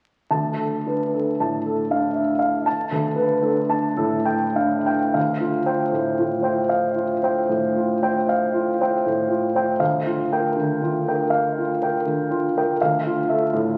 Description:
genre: classical, impressionist solo piano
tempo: 32-42 BPM (dotted quarters)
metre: 9/8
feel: rubato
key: D minor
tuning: A4 = 440 Hz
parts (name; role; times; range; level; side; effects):
- warm baby grand piano; solo; 0.3-13.8 s; D2 to A5; -22 LUFS; equal; none
room: wet recital hall reverb, RT60 1.7 s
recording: very old 78 rpm record, vinyl crackle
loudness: -22 LUFS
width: mono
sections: 0.3-5.2 A section; 5.2-13.8 B section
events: none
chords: 0.3 Dm6; 2.7 Gadd9/D; 5.2 Dm7; 9.8 Gm7/D; 12.8 Dmadd9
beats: | 0.31 1.91 3.44 | 5.16 6.72 8.28 | 9.80 11.32 12.80

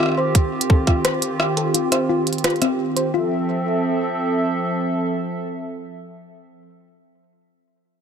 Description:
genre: IDM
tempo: 86 BPM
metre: 4/4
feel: straight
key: unclear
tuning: A4 = 440 Hz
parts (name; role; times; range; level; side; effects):
- hollow soft pad; sustained chords; 0.0-6.7 s; Eb3 to E5; -22 LUFS; right 2 dB; chorus
- thumb-piano-like synth pluck; arpeggios; 0.0-3.5 s; C4 to C5; -24 LUFS; left 4 dB; chorus, tape echo
- glitchy drum kit; drums; 0.0-3.1 s; hi-hat, rim click; -23 LUFS; right 1 dB; overdrive
- electronic kick drum; drums; 0.3-1.0 s; none; -16 LUFS; equal; overdrive
room: moderate lush hall reverb, RT60 3.1 s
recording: none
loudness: -18 LUFS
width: side -7 dB against mid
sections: 0.0-3.1 A section; 3.1-5.9 B section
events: none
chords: 0.0 Eb69; 3.1 Fmaj7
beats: | 0.35 1.05 1.75 2.44 | 3.14 3.84 4.54 5.23

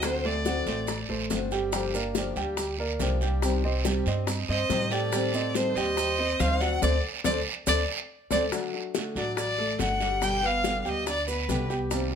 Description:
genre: latin, Cuban son and guajira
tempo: 141 BPM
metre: 4/4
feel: straight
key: unclear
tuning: A4 = 439 Hz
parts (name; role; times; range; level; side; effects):
- rich violin; melody; 0.0-1.1, 4.5-11.7 s; B4 to G5; -29 LUFS; left 1 dB; plate reverb
- flamenco guitar; accompaniment; 0.0-12.2 s; B2 to G4; -32 LUFS; left 4 dB; none
- warm grand piano; arpeggios; 0.0-12.2 s; F#3 to G5; -32 LUFS; right 2 dB; none
- upright bass; bass; 0.0-12.2 s; G1 to A2; -31 LUFS; right 1 dB; none
- bongos; percussion; 0.0-12.2 s; none; -34 LUFS; left 7 dB; none
- guiro; percussion; 0.0-12.2 s; none; -37 LUFS; right 7 dB; none
- maracas; percussion; 0.0-12.1 s; none; -37 LUFS; right 6 dB; none
- mellow concert flute; second line; 4.5-8.4 s; A4 to D5; -35 LUFS; right 6 dB; none
room: light reverb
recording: close, detailed microphones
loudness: -25 LUFS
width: side -7 dB against mid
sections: 0.0-8.5 A section; 8.5-12.2 B section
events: band accent 6.8-8.5; drum fill 7.9-8.5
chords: 0.0 D7; 1.7 Gm7; 3.4 Cm; 5.1 Am7b5; 6.8 D5; 8.5 D; 10.2 G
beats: | 0.03 0.45 0.88 1.30 | 1.73 2.15 2.58 3.00 | 3.43 3.85 4.28 4.70 | 5.13 5.55 5.97 6.40 | 6.82 7.25 7.67 8.10 | 8.52 8.94 9.37 9.79 | 10.22 10.64 11.06 11.49 | 11.91

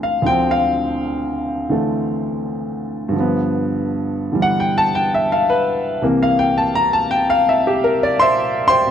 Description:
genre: solo jazz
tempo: 83 BPM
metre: 4/4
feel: swing 67% on 8ths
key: C mixolydian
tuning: A4 = 440 Hz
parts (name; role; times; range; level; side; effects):
- warm grand piano; solo; 0.0-8.9 s; C2 to C6; -16 LUFS; equal; none
room: studio ambience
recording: dry, close 1970s-style studio recording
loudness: -16 LUFS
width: side -9 dB against mid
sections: 0.0-8.9 A section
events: grand piano solo 0.0-8.9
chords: 0.0 Dm7; 3.1 G7; 6.0 C7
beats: | 0.25 0.97 1.69 2.41 | 3.13 3.85 4.58 5.30 | 6.02 6.75 7.47 8.19

